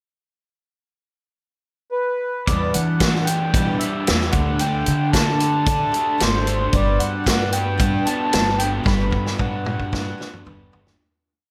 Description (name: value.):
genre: folk rock and heartland rock.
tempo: 113 BPM.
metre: 4/4.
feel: straight.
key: unclear.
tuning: A4 = 440 Hz.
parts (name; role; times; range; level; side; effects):
mellow accordion; melody; 1.9-10.4 s; B4 to B5; -26 LUFS; equal; analog delay.
picked twelve-string acoustic guitar; accompaniment; 2.5-11.0 s; E2 to G4; -29 LUFS; equal; none.
raw garage guitar; riff; 2.5-11.0 s; E2 to D4; -31 LUFS; equal; overdrive, slapback echo.
upright bass; bass; 2.5-10.9 s; G1 to E3; -25 LUFS; equal; none.
vintage drum kit; drums; 2.5-11.0 s; hi-hat, kick drum, snare drum, toms; -24 LUFS; equal; none.
room: moderate lush hall reverb, RT60 1.9 s.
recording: big arena sound.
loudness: -20 LUFS.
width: mono.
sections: 0.3-2.5 pickup bar; 2.5-11.0 verse.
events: fade-out 8.9-11.0; drum fill 8.9-11.0.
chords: 0.3 N.C.; 2.5 Em7; 4.3 Dsus4; 6.7 Gmaj7.